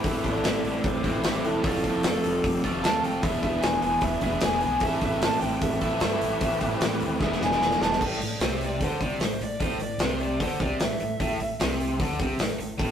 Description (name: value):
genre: blues rock power trio and southern rock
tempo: 151 BPM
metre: 4/4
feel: straight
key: A minor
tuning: A4 = 441 Hz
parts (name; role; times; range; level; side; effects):
- percussive tonewheel organ; sustained chords; 0.0-8.0 s; C4 to B4; -37 LUFS; equal; slow rotary speaker
- crunchy overdriven guitar; riff; 0.0-12.9 s; A2 to A4; -28 LUFS; equal; none
- upright bass; bass; 0.0-12.9 s; E1 to G2; -35 LUFS; equal; none
- big rock drum kit; drums; 0.0-12.9 s; crash cymbal, hi-hat, kick drum, snare drum; -28 LUFS; equal; none
- overdriven slide guitar; melody; 0.2-11.6 s; E4 to A5; -28 LUFS; right 1 dB; none
room: wet stone room reverb, RT60 1.0 s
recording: rough rehearsal-room recording, tube saturation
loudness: -23 LUFS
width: side -9 dB against mid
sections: 0.0-8.0 A section; 8.0-12.9 B section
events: electric slide guitar solo 0.0-8.0; drum fill 7.2-8.0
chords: 0.0 Am9; 1.6 Fmaj7; 3.2 E7; 4.8 Am9; 7.2 E7; 8.0 Am